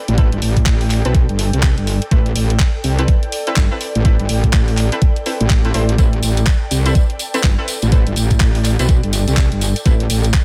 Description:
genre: bass house.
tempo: 124 BPM.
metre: 4/4.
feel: swing 61% on 16ths.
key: A minor.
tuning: A4 = 443 Hz.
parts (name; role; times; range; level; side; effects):
ethereal airy pad; texture; 0.0-10.4 s; A4 to G5; -30 LUFS; equal; ensemble chorus, built-in reverb, sidechain pumping.
metallic wobble bass; bass; 0.1-10.3 s; G1 to C2; -19 LUFS; equal; chorus, sidechain pumping.
garage drum kit; drums; 0.1-10.4 s; handclaps, hi-hat; -26 LUFS; equal; none.
orchestra-hit-like synth stab; stabs; 0.2-10.0 s; C4 to C5; -28 LUFS; equal; built-in reverb, sidechain pumping, dub echo.
electronic kick drum; drums; 0.2-10.4 s; none; -16 LUFS; equal; overdrive.
tambourine; percussion; 6.0-10.4 s; none; -29 LUFS; equal; none.
room: digital ambience.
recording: none.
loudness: -16 LUFS.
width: mono.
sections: 0.0-10.4 A section.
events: none.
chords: 0.0 Amadd9.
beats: | 0.18 0.66 1.15 1.63 | 2.11 2.60 3.08 3.56 | 4.05 4.53 5.02 5.50 | 5.99 6.47 6.95 7.44 | 7.92 8.40 8.89 9.37 | 9.86 10.34.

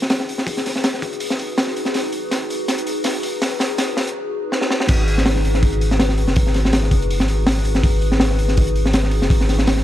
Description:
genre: drum and bass, jungle.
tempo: 163 BPM.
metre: 4/4.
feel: swing 54% on 16ths.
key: G# minor.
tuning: A4 = 440 Hz.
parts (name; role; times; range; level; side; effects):
warbly tape-like pad; sustained chords; 0.0-9.8 s; D#4 to B4; -25 LUFS; left 2 dB; chorus, built-in reverb, vintage 12-bit sampler grit.
saturated sub bass; bass; 0.0-9.8 s; F#1 to G#1; -19 LUFS; equal; high-pass filter.
crunchy breakbeat drum kit; drums; 0.0-9.8 s; crash cymbal, hi-hat, kick drum, snare drum; -19 LUFS; equal; high-pass filter on kick, high-pass filter on hats, high-pass filter on cymbals, high-pass filter on snare, high-pass filter on room.
room: small room ambience.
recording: lossy compression artefacts.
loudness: -16 LUFS.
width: side -13 dB against mid.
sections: 0.0-4.9 A section; 4.9-9.8 B section.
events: build-up 0.0-4.9; drum fill 1.9-4.2, 4.5-4.9; drop 4.9-9.8.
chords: 0.0 G#m7.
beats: 0.10 | 0.47 0.84 1.21 1.58 | 1.94 2.31 2.68 3.05 | 3.42 3.78 4.15 4.52 | 4.89 5.26 5.62 5.99 | 6.36 6.73 7.10 7.46 | 7.83 8.20 8.57 8.94 | 9.31 9.67.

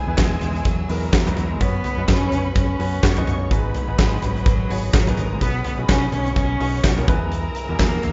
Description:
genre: piano-driven pop.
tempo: 126 BPM.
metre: 4/4.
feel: swing 56% on 16ths.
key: unclear.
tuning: A4 = 441 Hz.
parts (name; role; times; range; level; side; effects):
warm studio violin section; second line; 0.0-8.1 s; G#4 to C#6; -34 LUFS; equal; none.
bright concert grand piano; accompaniment; 0.0-8.1 s; G#2 to D#5; -32 LUFS; equal; none.
warm studio string section; sustained chords; 0.0-8.1 s; B3 to E6; -42 LUFS; equal; none.
fingered electric bass; bass; 0.1-8.1 s; G#1 to F#2; -27 LUFS; equal; none.
clear cello; melody; 0.2-8.1 s; F#3 to C#4; -29 LUFS; equal; none.
huge arena drum kit; drums; 0.2-8.1 s; handclaps, hi-hat, kick drum, snare drum, toms; -23 LUFS; equal; none.
room: light reverb.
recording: rough home demo mix, nothing above 7.7 kHz.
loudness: -20 LUFS.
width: mono.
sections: 0.0-8.1 A section.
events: none.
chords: 0.0 E; 1.6 F#sus4; 3.5 G#m7; 5.4 Badd9; 7.1 E.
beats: 0.18 0.66 1.13 | 1.61 2.08 2.56 3.04 | 3.51 3.99 4.46 4.94 | 5.42 5.89 6.37 6.84 | 7.32 7.79.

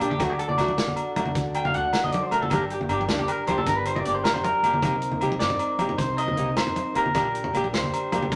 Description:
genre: highlife guitar band.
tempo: 104 BPM (dotted quarters).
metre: 12/8.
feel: straight.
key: G harmonic minor.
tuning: A4 = 440 Hz.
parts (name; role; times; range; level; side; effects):
flamenco guitar; accompaniment; 0.0-8.3 s; A3 to G4; -33 LUFS; equal; none.
overdriven combo organ; sustained chords; 0.0-8.4 s; C4 to Bb4; -34 LUFS; equal; none.
electric guitar through a small old amp; arpeggios; 0.0-8.4 s; D4 to G5; -28 LUFS; equal; none.
upright bass; bass; 0.0-8.4 s; G1 to G2; -37 LUFS; equal; none.
vintage drum kit; drums; 0.0-8.4 s; hi-hat, kick drum, snare drum; -32 LUFS; equal; none.
agogo bells; percussion; 0.0-8.3 s; none; -34 LUFS; equal; none.
congas; percussion; 0.0-8.3 s; none; -34 LUFS; equal; none.
room: wet studio reverb, RT60 0.7 s.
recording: none.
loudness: -25 LUFS.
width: mono.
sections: 0.0-8.4 A section.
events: clean electric guitar solo 0.0-8.4.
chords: 0.2 D; 2.5 Gm; 4.8 Cm7; 7.2 Gm/Bb.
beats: | 0.20 0.78 1.36 1.94 | 2.51 3.09 3.67 4.25 | 4.83 5.41 5.99 6.57 | 7.15 7.73 8.31.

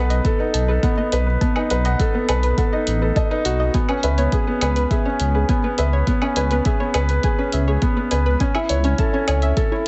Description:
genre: piano and strings electronica.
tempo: 103 BPM.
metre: 4/4.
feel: straight.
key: C# minor.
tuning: A4 = 440 Hz.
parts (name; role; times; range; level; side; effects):
soft round pluck; arpeggios; 0.0-9.8 s; B4 to A5; -31 LUFS; equal; chorus, sidechain pumping, tape echo.
felt-muted upright piano; riff; 0.0-9.9 s; B3 to F#5; -24 LUFS; equal; tape echo.
dark detuned saw bass; bass; 0.0-9.5 s; A1 to C#2; -22 LUFS; equal; sidechain pumping.
electronic hi-hat and woodblock; drums; 0.1-9.9 s; none; -31 LUFS; equal; none.
electronic kick drum; drums; 0.2-9.7 s; none; -23 LUFS; equal; none.
room: light reverb, digital ambience.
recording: nothing above 8.0 kHz.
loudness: -19 LUFS.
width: mono.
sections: 0.0-9.9 A section.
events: none.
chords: 0.0 B7; 3.7 C#m7; 8.4 Amaj7/C#.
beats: 0.25 0.83 | 1.41 2.00 2.58 3.16 | 3.74 4.33 4.91 5.49 | 6.07 6.66 7.24 7.82 | 8.40 8.99 9.57.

